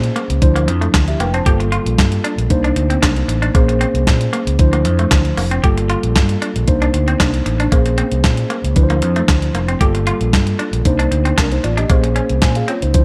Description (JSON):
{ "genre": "early-eighties boogie funk", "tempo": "115 BPM", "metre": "4/4", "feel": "straight", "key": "G minor", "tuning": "A4 = 440 Hz", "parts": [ { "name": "mellow tine electric piano", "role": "accompaniment", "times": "0.0-13.0 s", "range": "F3 to A5", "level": "-22 LUFS", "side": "equal", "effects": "none" }, { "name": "overdriven fingered electric bass", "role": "bass", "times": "0.0-13.0 s", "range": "F1 to Bb2", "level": "-20 LUFS", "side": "equal", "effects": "none" }, { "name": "crisp 8-bit digital drum machine", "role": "drums", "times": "0.0-13.0 s", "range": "handclaps, hi-hat, kick drum, snare drum", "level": "-18 LUFS", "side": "equal", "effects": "gated reverb" }, { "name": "semi-hollow electric guitar", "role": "riff", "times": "0.2-12.8 s", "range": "A3 to G4", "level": "-26 LUFS", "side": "equal", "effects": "lush chorus" } ], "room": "little or no reverb", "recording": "none", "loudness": "-15 LUFS", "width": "mono", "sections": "0.0-13.0 A section", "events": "none", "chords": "0.4 Dm9; 1.5 Gm9; 2.5 Cm9; 3.5 Bbm9; 4.6 Dm9; 5.6 Gm9; 6.7 Cm9; 7.7 Bbm9; 8.8 Dm9; 9.8 Gm9; 10.9 Cm9; 11.9 Bbm9" }